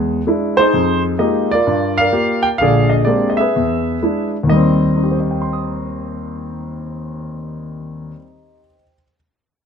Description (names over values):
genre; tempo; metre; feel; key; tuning
solo jazz; 128 BPM; 4/4; swing 68% on 8ths; Eb major; A4 = 440 Hz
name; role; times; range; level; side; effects
warm concert grand piano; solo; 0.0-9.2 s; Bb1 to Eb6; -15 LUFS; equal; none
room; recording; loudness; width
light reverb; minimal, uncompressed stereo recording; -14 LUFS; side -7 dB against mid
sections
0.0-4.5 A section; 4.5-8.3 B section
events
none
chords
0.0 E7; 0.7 Fm11; 1.7 Gm7; 2.6 Bb13; 3.6 E7; 4.5 Eb6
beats
0.26 | 0.73 1.20 1.67 2.14 | 2.61 3.08 3.55 4.02 | 4.49 4.96 5.43 5.90 | 6.37 6.84 7.31 7.78